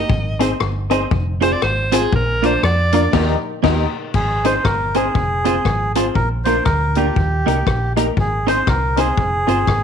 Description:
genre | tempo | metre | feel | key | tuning
ska | 119 BPM | 4/4 | swing 61% on 8ths | unclear | A4 = 439 Hz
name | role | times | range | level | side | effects
edgy alto saxophone | melody | 0.0-3.4 s | Ab4 to Eb5 | -21 LUFS | right 1 dB | none
hollow-body short-scale fingered electric bass | bass | 0.0-9.8 s | F1 to F2 | -21 LUFS | right 1 dB | none
street-band drum kit | drums | 0.1-9.8 s | crash cymbal, hi-hat, kick drum, rim click, snare drum | -22 LUFS | left 4 dB | none
clean electric guitar | accompaniment | 0.4-9.6 s | Bb3 to C5 | -22 LUFS | right 12 dB | slapback echo
honky-tonk upright piano | stabs | 0.4-9.6 s | Bb3 to Eb5 | -23 LUFS | left 11 dB | none
melodica | melody | 4.2-9.8 s | G4 to C5 | -20 LUFS | right 1 dB | none
room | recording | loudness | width
light reverb, small room ambience | 1960s-style stereo with parts hard left and right | -15 LUFS | side -7 dB against mid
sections
0.0-4.1 A section; 4.1-9.8 B section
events
alto saxophone solo 0.0-4.1; band accent 3.1-4.1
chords
0.1 Ab; 1.1 Fm; 2.1 Bb; 3.1 Eb; 4.1 Ab; 5.2 Fm; 6.2 Bb; 7.2 Eb; 8.2 Ab; 9.2 Fm

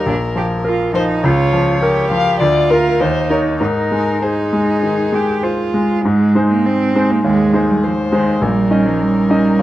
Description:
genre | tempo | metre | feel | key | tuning
quick classical-period movement for piano trio | 102 BPM | 4/4 | straight | Ab major | A4 = 440 Hz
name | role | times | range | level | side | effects
dark violin | melody | 0.0-9.6 s | Ab4 to F5 | -20 LUFS | left 4 dB | none
rich cello | second line | 0.0-9.6 s | Eb3 to G4 | -18 LUFS | right 3 dB | none
bright grand piano | accompaniment | 0.0-9.6 s | Bb1 to Eb5 | -16 LUFS | equal | none
room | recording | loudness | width
light reverb | worn, warbling old tape, cassette tape, warbly pitch drift | -13 LUFS | side -14 dB against mid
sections
0.0-6.1 A section; 6.1-9.6 B section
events
none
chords
0.1 Bb5; 1.2 Bbm/Db; 2.4 Bb/D; 3.0 Eb5; 3.6 Ab; 8.4 Eb7/Bb

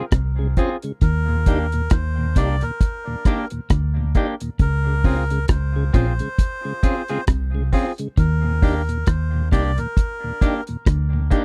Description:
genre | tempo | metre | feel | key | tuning
roots reggae | 67 BPM | 4/4 | swing 58% on 16ths | Eb major | A4 = 440 Hz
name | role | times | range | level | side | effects
mellow tonewheel organ | accompaniment | 0.0-11.4 s | Eb2 to G4 | -28 LUFS | equal | slow rotary speaker
semi-hollow electric guitar | accompaniment | 0.0-11.4 s | Bb3 to Ab4 | -30 LUFS | equal | tape echo
clean electric guitar | riff | 0.1-11.1 s | Bb2 to Eb3 | -29 LUFS | equal | none
vintage muted fingered electric bass | bass | 0.1-11.3 s | Bb1 to Eb2 | -23 LUFS | equal | none
deep reggae drum kit | drums | 0.1-11.4 s | hi-hat, kick drum, rim click | -20 LUFS | equal | none
melodica | melody | 1.0-10.6 s | Bb4 to D5 | -32 LUFS | equal | tape echo
room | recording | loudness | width
little or no reverb | dry, close 1970s-style studio recording | -21 LUFS | mono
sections
0.0-11.4 A section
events
none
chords
0.0 Dbmaj7; 1.0 Ebmaj7; 4.6 Dbmaj7; 8.2 Ebmaj7

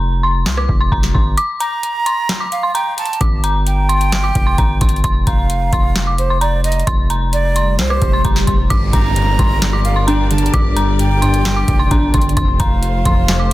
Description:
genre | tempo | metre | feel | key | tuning
hip hop, trap | 131 BPM | 4/4 | half-time | G minor | A4 = 443 Hz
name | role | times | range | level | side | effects
dark detuned synth bell | melody | 0.0-13.5 s | Bb5 to D6 | -21 LUFS | left 1 dB | chorus, low-pass filter, tape echo
distorted 808-style bass | bass | 0.0-13.5 s | F1 to C2 | -17 LUFS | equal | distortion
booming analog drum machine | drums | 0.5-13.4 s | handclaps, hi-hat, kick drum, rim click, snare drum | -17 LUFS | equal | none
breathy jazz flute | second line | 1.6-13.5 s | C5 to Bb5 | -22 LUFS | right 4 dB | tape echo
swell and downlifter | sound effects | 7.2-12.4 s | none | -27 LUFS | equal | none
warbly lo-fi synth keys | accompaniment | 8.7-13.5 s | F2 to D4 | -19 LUFS | equal | chorus, low-pass filter
warm studio string section | sustained chords | 8.7-13.5 s | F3 to D5 | -26 LUFS | left 2 dB | none
room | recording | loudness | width
digital ambience | dense, heavily limited modern master, faint mains hum | -13 LUFS | side -16 dB against mid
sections
0.0-8.7 A section; 8.7-13.5 B section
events
break 0.0-1.4, 1.4-2.3; swell 7.2-8.7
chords
0.0 F5; 1.4 Gm; 5.0 F5; 8.7 Gm; 12.4 F

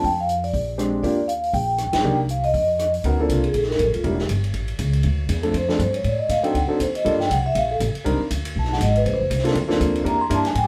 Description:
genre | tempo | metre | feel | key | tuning
jazz, small-group swing and bop | 240 BPM | 4/4 | swing 58% on 8ths | Bb major | A4 = 440 Hz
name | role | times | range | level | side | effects
vibraphone with soft mallets | melody | 0.0-10.7 s | F4 to C6 | -24 LUFS | equal | none
upright bass | bass | 0.0-10.7 s | D1 to A2 | -26 LUFS | equal | none
swinging big-band drum kit | drums | 0.0-10.6 s | hi-hat, kick drum, ride cymbal, rim click, snare drum | -33 LUFS | equal | none
warm concert grand piano | accompaniment | 0.8-10.4 s | F3 to Bb4 | -25 LUFS | equal | none
room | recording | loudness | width
moderate studio reverb, RT60 0.5 s | band playing live in one room | -21 LUFS | mono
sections
0.0-3.0 A section; 3.0-10.7 B section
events
band accent 1.9; vibraphone solo 3.0-10.7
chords
0.0 Dmadd11/F (rootless); 0.5 Bb13; 1.0 Ebmaj9; 2.0 Cm9; 2.5 Ebsus2/F; 3.0 Bbmaj9; 4.0 Em7b5; 4.5 A; 5.0 Dm7; 6.0 Adim; 6.5 D7b9; 7.0 Gm9; 8.0 Cm9; 8.5 Abm; 9.0 Bbmaj9; 10.0 Em7b5

